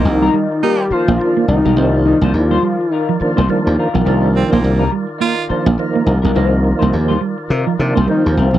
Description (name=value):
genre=funk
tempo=105 BPM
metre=4/4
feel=swing 60% on 16ths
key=C minor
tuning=A4 = 440 Hz
part: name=fat analog lead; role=melody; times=0.0-3.2, 8.1-8.6 s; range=C4 to G4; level=-16 LUFS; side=left 2 dB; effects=none
part: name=raspy baritone saxophone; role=second line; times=0.0-0.9, 4.4-5.4 s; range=Bb3 to F4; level=-21 LUFS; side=right 6 dB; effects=none
part: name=clean electric guitar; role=accompaniment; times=0.0-8.6 s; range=Eb4 to C5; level=-23 LUFS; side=left 7 dB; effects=wah, analog chorus
part: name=percussive tonewheel organ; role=sustained chords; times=0.0-8.6 s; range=Eb3 to D5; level=-27 LUFS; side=left 1 dB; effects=slow rotary speaker, overdrive
part: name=mellow electric guitar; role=riff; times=0.0-8.6 s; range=F3 to C4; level=-19 LUFS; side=right 7 dB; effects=none
part: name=percussive tonewheel organ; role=stabs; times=0.0-8.5 s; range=Eb3 to F4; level=-18 LUFS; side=right 2 dB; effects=overdrive, chorus vibrato, slow rotary speaker
part: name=slap bass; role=bass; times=0.0-8.6 s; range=Bb1 to C3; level=-15 LUFS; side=left 1 dB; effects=none
room=little or no reverb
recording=dry, close 1970s-style studio recording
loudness=-12 LUFS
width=side -13 dB against mid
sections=0.0-8.6 A section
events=none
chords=0.0 Cm11